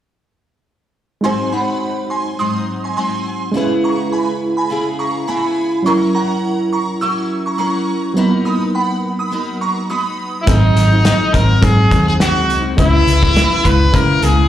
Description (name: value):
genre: indie pop, bedroom pop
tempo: 104 BPM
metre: 4/4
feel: swing 55% on 16ths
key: unclear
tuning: A4 = 445 Hz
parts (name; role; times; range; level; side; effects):
- shimmering bell with halo; second line; 1.2-10.3 s; F#5 to E6; -21 LUFS; right 3 dB; ensemble chorus, analog chorus, plate reverb, slapback echo, tape echo
- picked steel-string acoustic guitar; accompaniment; 1.2-14.5 s; G#2 to A#4; -21 LUFS; left 3 dB; analog chorus, vibrato effect
- reed electric piano; accompaniment; 1.2-14.5 s; F#3 to B#4; -20 LUFS; right 3 dB; overdrive, fast tremolo, cassette tape
- brilliant trumpet; melody; 10.4-14.5 s; D#4 to B4; -16 LUFS; equal; lush chorus, plate reverb, slapback echo
- vintage muted fingered electric bass; bass; 10.5-14.5 s; G#1 to C#3; -14 LUFS; equal; none
- loose indie drum kit; drums; 10.5-14.4 s; hi-hat, kick drum, snare drum; -17 LUFS; left 1 dB; none
room: moderate club reverb, RT60 0.7 s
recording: live gig heard through the venue's PA, club reverb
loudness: -13 LUFS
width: side -11 dB against mid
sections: 1.2-10.5 A section; 10.5-14.5 B section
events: none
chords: 1.2 G#7; 3.5 C#m7; 5.9 F#7; 8.2 Bmaj7/F#; 10.5 G#7; 12.8 C#m7